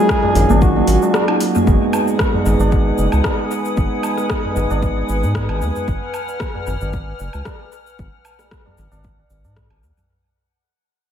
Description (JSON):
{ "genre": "organic downtempo", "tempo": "114 BPM", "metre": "4/4", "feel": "swing 54% on 16ths", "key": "G# dorian", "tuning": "A4 = 439 Hz", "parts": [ { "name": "trumpet with bucket mute", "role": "melody", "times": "0.0-1.4 s", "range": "F#4 to G#4", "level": "-22 LUFS", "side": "equal", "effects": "dub echo" }, { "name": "overdriven tine electric piano", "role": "accompaniment", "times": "0.0-5.9 s", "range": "F#3 to E#5", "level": "-22 LUFS", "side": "right 3 dB", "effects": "vintage 12-bit sampler grit, sidechain pumping, dub echo" }, { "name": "kalimba", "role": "arpeggios", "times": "0.0-1.7 s", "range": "F#3 to G#4", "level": "-21 LUFS", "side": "equal", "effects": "analog delay" }, { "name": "drifting glass-harmonics texture", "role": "texture", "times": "0.0-10.1 s", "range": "F#4 to F#5", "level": "-30 LUFS", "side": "right 2 dB", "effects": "chorus, built-in reverb" }, { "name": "deep house drum kit", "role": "drums", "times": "0.1-10.1 s", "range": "hi-hat, rim click, shaker, woodblock", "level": "-24 LUFS", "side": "left 1 dB", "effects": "overdrive, dub echo" }, { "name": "electronic kick drum", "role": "drums", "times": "0.1-9.7 s", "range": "none", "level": "-20 LUFS", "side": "equal", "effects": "overdrive" }, { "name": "tabla", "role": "percussion", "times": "0.2-10.1 s", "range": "none", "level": "-26 LUFS", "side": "right 1 dB", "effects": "dub echo" }, { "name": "round analog bass", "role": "bass", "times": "0.4-9.9 s", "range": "F#1 to G#2", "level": "-18 LUFS", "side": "equal", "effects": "sidechain pumping" }, { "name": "warm analog pad", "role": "sustained chords", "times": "1.7-10.1 s", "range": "B4 to E#6", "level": "-27 LUFS", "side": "left 2 dB", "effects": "chorus, sidechain pumping" } ], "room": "moderate echo chamber reverb, RT60 1.4 s", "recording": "echo-heavy mix", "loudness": "-15 LUFS", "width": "side -9 dB against mid", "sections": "0.0-1.7 A section; 1.7-10.1 B section", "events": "break 1.1-1.7; fade-out 1.7-10.1", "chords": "0.0 D#m7; 1.7 G#m", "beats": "0.09 0.61 1.14 | 1.67 2.19 2.72 3.25 | 3.77 4.30 4.83 5.35 | 5.88 6.40 6.93 7.46 | 7.98 8.51 9.04 9.56" }